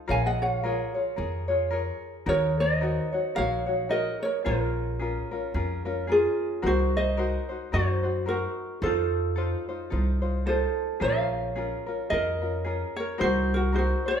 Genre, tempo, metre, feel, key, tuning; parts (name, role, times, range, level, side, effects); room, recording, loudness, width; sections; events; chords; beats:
Hawaiian; 110 BPM; 4/4; swing 58% on 8ths; Bb minor; A4 = 441 Hz
ukulele; melody; 0.0-14.2 s; F4 to A5; -27 LUFS; right 2 dB
tenor ukulele; accompaniment; 0.0-14.2 s; Db4 to Db5; -31 LUFS; left 3 dB
upright bass; bass; 0.1-13.9 s; Bb1 to Gb2; -29 LUFS; equal
moderate large studio reverb, RT60 1.3 s; band playing live in one room; -24 LUFS; side -8 dB against mid
0.0-14.2 A section
0.1 Bbm7; 2.3 Ebm7; 4.5 Bbm7; 6.6 Cm7b5; 8.8 F7; 11.0 Bbm7; 13.2 Cm7b5
| 0.08 0.63 1.18 1.72 | 2.27 2.82 3.36 3.91 | 4.46 5.00 5.55 6.09 | 6.64 7.19 7.73 8.28 | 8.83 9.37 9.92 10.47 | 11.02 11.56 12.11 12.66 | 13.21 13.75